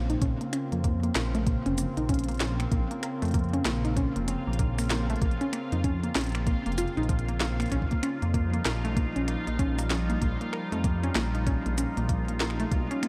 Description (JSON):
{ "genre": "IDM", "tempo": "96 BPM", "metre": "4/4", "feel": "swing 62% on 16ths", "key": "unclear", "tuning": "A4 = 439 Hz", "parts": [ { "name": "warbly tape-like pad", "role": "sustained chords", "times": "0.0-13.1 s", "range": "Db3 to Eb4", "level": "-37 LUFS", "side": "equal", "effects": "chorus, built-in reverb" }, { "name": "dark detuned saw bass", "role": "bass", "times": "0.0-12.9 s", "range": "F1 to F2", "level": "-32 LUFS", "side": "equal", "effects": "tube saturation" }, { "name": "bubbling stepped-filter texture", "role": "texture", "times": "0.0-13.1 s", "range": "F4 to F5", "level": "-43 LUFS", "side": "equal", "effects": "chorus, built-in reverb" }, { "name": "warbly dusty pluck", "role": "arpeggios", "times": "0.1-13.1 s", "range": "F3 to Bb4", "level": "-34 LUFS", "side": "equal", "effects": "chorus, tape echo" }, { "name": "glitchy drum kit", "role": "drums", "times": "0.1-13.1 s", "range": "cabasa, finger snaps, hi-hat, snare drum", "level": "-36 LUFS", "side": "equal", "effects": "none" }, { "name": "electronic kick drum", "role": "drums", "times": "0.2-12.9 s", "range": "none", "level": "-30 LUFS", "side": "equal", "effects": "none" } ], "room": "light reverb, digital ambience", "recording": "dark, warm production", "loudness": "-28 LUFS", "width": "mono", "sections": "0.0-13.1 A section", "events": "none", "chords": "0.0 Bbmadd9; 7.7 Ebadd9/Bb" }